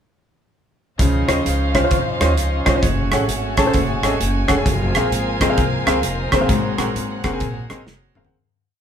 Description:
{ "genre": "uptempo gospel", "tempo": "131 BPM", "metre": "4/4", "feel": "swing 63% on 8ths", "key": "Db major", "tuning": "A4 = 440 Hz", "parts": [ { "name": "clear baby grand piano", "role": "accompaniment", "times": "1.0-8.3 s", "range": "Ab2 to A5", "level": "-21 LUFS", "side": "left 1 dB", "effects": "none" }, { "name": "bright tonewheel organ", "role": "sustained chords", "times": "1.0-8.3 s", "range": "F3 to C5", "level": "-27 LUFS", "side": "right 2 dB", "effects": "fast rotary speaker" }, { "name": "warm studio string section", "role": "sustained chords", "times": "1.0-8.3 s", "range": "A3 to Ab5", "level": "-28 LUFS", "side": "left 1 dB", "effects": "none" }, { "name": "upright bass", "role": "bass", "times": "1.0-8.3 s", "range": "F1 to F2", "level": "-23 LUFS", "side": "equal", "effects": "none" }, { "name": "modern studio drum kit", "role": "drums", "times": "1.0-8.3 s", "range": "hi-hat, kick drum, rim click, snare drum, toms", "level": "-20 LUFS", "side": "equal", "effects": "none" } ], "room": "moderate stone room reverb, RT60 1.2 s", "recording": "band playing live in one room", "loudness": "-16 LUFS", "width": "side -8 dB against mid", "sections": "1.0-8.3 breakdown", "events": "fade-out 6.5-8.3; drum fill 7.9-8.3", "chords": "1.0 Dbmaj9; 2.8 Gbmadd9; 4.7 Gbmaj9#11; 6.5 Ab9" }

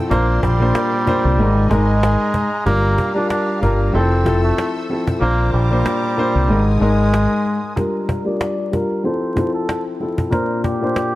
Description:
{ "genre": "hip hop, boom-bap hip-hop", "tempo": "94 BPM", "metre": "4/4", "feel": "swing 56% on 16ths", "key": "G dorian", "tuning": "A4 = 440 Hz", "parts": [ { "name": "dark upright piano", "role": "accompaniment", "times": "0.0-11.2 s", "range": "Ab2 to C5", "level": "-19 LUFS", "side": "left 1 dB", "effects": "cassette tape, low-pass filter, analog delay" }, { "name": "rich studio string section", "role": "sustained chords", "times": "0.0-7.8 s", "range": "G4 to E6", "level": "-31 LUFS", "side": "left 2 dB", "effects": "none" }, { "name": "trumpet with cup mute", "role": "melody", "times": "0.1-11.2 s", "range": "G3 to D5", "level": "-22 LUFS", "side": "right 2 dB", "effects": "low-pass filter, analog delay" }, { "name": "deep dub fingered electric bass", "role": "bass", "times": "0.1-7.3 s", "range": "F1 to C2", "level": "-17 LUFS", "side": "equal", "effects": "none" }, { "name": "cajon", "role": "drums", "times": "0.1-11.1 s", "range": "none", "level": "-23 LUFS", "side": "equal", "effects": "none" } ], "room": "studio reverb", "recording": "echo-heavy mix, vinyl crackle", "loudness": "-15 LUFS", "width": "side -17 dB against mid", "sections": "0.0-7.8 A section; 7.8-11.2 B section", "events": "kick muted 5.2-7.8; filter sweep 7.8-11.2", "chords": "0.1 Bbadd9; 1.4 Absus2; 2.7 Gm7; 3.9 Fmaj7; 5.2 Bbadd9; 6.5 Absus2; 7.8 Gm7; 9.0 Fmaj7; 10.3 Bbadd9" }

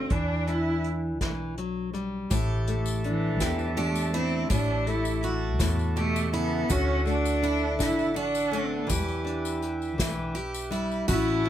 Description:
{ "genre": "acoustic folk duo or small band", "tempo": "55 BPM (dotted quarters)", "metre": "6/8", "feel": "straight", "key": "unclear", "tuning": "A4 = 438 Hz", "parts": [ { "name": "clear cello", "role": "melody", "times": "0.0-11.5 s", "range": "E3 to E4", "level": "-29 LUFS", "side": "right 1 dB", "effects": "plate reverb" }, { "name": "nylon-string guitar", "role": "accompaniment", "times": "0.0-11.5 s", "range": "A2 to G4", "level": "-31 LUFS", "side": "left 2 dB", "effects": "none" }, { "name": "upright bass", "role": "bass", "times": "0.0-11.5 s", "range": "A1 to E2", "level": "-30 LUFS", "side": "equal", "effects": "none" }, { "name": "unplugged drum kit", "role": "drums", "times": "0.1-11.5 s", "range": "hi-hat, kick drum, ride cymbal, snare drum", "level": "-31 LUFS", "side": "equal", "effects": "none" }, { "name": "accordion", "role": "sustained chords", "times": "2.3-11.5 s", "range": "A4 to D6", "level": "-38 LUFS", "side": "left 1 dB", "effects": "none" }, { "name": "picked steel-string acoustic guitar", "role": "arpeggios", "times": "2.3-11.5 s", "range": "D4 to G4", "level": "-32 LUFS", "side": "right 2 dB", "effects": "none" }, { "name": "tambourine", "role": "percussion", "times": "2.3-11.4 s", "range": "none", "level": "-39 LUFS", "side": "left 6 dB", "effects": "none" } ], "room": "light reverb", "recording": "none", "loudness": "-25 LUFS", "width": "side -11 dB against mid", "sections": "0.0-11.1 A section", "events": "cello solo 0.0-11.1", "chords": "0.1 Em7; 2.3 A7sus4; 6.7 D; 8.9 Em7" }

